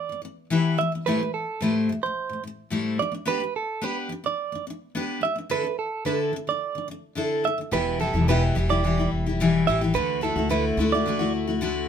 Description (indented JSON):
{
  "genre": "acoustic pop",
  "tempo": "108 BPM",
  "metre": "4/4",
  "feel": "straight",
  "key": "unclear",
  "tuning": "A4 = 439 Hz",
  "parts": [
    { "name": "picked steel-string acoustic guitar", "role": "accompaniment", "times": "0.0-11.9 s", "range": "E2 to C5", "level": "-24 LUFS", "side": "left 3 dB", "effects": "none" },
    { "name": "direct-recorded clean electric guitar", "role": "arpeggios", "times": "0.0-11.3 s", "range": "A4 to E5", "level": "-26 LUFS", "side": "right 7 dB", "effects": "none" },
    { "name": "upright bass", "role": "bass", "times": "7.7-11.9 s", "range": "E1 to D2", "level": "-27 LUFS", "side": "right 1 dB", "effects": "none" }
  ],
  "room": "light reverb",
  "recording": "minimal, uncompressed stereo recording",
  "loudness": "-22 LUFS",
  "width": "side -8 dB against mid",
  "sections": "0.0-7.7 A section; 7.7-11.9 B section",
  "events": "none",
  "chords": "0.0 Em; 1.1 Am7; 3.0 G/B; 5.5 Dsus2; 7.7 Em; 10.0 Dadd9"
}